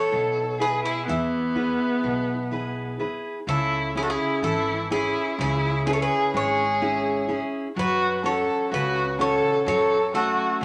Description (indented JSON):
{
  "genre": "greek folk, Greek bouzouki band",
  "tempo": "126 BPM (eighths)",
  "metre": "9/8",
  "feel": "straight",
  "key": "unclear",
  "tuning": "A4 = 440 Hz",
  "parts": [
    { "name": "Greek bouzouki", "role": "melody", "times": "0.0-10.6 s", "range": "E4 to C#5", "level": "-31 LUFS", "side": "equal", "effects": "none" },
    { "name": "clear violin", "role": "second line", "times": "0.0-10.6 s", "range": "B3 to A4", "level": "-27 LUFS", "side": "equal", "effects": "none" },
    { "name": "fingerpicked steel-string acoustic guitar", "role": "accompaniment", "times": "0.0-10.6 s", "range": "B2 to B4", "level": "-31 LUFS", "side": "equal", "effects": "none" },
    { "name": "upright bass", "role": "bass", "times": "0.1-10.6 s", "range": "G#1 to F#2", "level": "-35 LUFS", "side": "equal", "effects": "none" }
  ],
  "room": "moderate studio reverb, RT60 0.7 s",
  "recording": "none",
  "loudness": "-24 LUFS",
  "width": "mono",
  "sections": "0.0-3.5 A section; 3.5-10.6 B section",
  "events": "none",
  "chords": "0.0 E; 3.5 C#m; 7.8 F#m",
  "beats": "0.13 0.61 1.09 1.56 2.04 2.52 3.00 | 3.48 3.95 4.43 4.91 5.39 5.86 6.34 6.82 7.29 | 7.77 8.24 8.72 9.19 9.67 10.14 10.62"
}